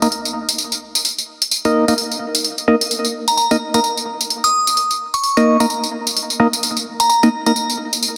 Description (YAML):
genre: bass house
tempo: 129 BPM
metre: 4/4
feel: swing 58% on 16ths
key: unclear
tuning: A4 = 439 Hz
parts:
  - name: percussive organ stab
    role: stabs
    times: 0.0-7.5 s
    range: Bb3 to Eb5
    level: -20 LUFS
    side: equal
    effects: chorus, phaser, vintage 12-bit sampler grit, tape echo
  - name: tambourine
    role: drums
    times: 0.0-8.1 s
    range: none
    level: -21 LUFS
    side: equal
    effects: none
  - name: glassy synth bell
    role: melody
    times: 3.3-7.6 s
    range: Bb5 to Eb6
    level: -20 LUFS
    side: equal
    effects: chorus, phaser, tape echo
room: moderate lush hall reverb, RT60 2.2 s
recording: dense, heavily limited modern master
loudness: -17 LUFS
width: mono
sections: 0.0-8.2 A section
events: none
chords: 0.0 Eb5